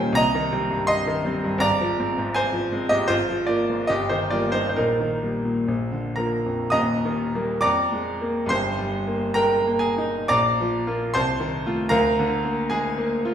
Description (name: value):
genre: classical, romantic character piece for solo piano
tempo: 54-87 BPM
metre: 2/4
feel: rubato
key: Eb major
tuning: A4 = 438 Hz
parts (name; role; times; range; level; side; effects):
- bright grand piano; solo; 0.0-13.3 s; Eb1 to Eb6; -20 LUFS; equal; none
room: wet recital hall reverb, RT60 1.5 s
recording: heard from further back in the room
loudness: -20 LUFS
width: side -9 dB against mid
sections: 0.0-6.7 A section; 6.7-13.3 B section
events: none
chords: 0.2 Cm7; 1.6 Fm/Ab; 3.1 Bb7/Ab; 3.9 Eb/G; 4.8 Eb/Bb; 5.7 Bb; 6.7 Eb; 7.6 Bb7/F; 8.5 Eb/G; 10.3 Bb; 11.2 F7/C; 11.9 Bb/D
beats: | 0.20 0.90 | 1.64 2.37 | 3.10 3.90 | 4.77 5.68 | 6.73 7.64 | 8.52 9.37 | 10.31 11.15 | 11.94 12.74